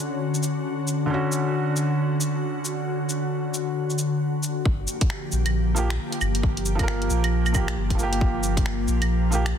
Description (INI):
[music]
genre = future garage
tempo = 135 BPM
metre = 4/4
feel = swing 61% on 16ths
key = unclear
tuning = A4 = 440 Hz
[part]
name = felt-muted upright piano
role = accompaniment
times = 0.0-9.4 s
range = D3 to Bb4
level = -29 LUFS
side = right 4 dB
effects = sidechain pumping, dub echo
[part]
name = ethereal airy pad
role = sustained chords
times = 0.0-9.6 s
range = D3 to G4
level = -26 LUFS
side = left 2 dB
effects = ensemble chorus, built-in reverb, sidechain pumping
[part]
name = garage drum kit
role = drums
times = 0.3-9.5 s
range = cabasa, claves, finger snaps, hi-hat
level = -30 LUFS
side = right 1 dB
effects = studio reverb, soft clipping on snare
[part]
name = warm sub bass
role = bass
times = 4.7-9.5 s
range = G1 to Bb1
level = -24 LUFS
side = equal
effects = sidechain pumping
[part]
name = electronic kick drum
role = drums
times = 4.7-8.6 s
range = none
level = -23 LUFS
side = equal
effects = studio reverb
[sound]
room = digital ambience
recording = dense, heavily limited modern master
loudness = -22 LUFS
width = side -8 dB against mid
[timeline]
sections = 0.0-4.7 A section; 4.7-9.6 B section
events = filter sweep on felt piano 0.0-4.7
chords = 0.0 Dmaj7; 4.7 Gm7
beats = 0.21 0.66 | 1.10 1.54 1.99 2.43 | 2.88 3.32 3.77 4.21 | 4.66 5.10 5.54 5.99 | 6.43 6.88 7.32 7.77 | 8.21 8.66 9.10 9.54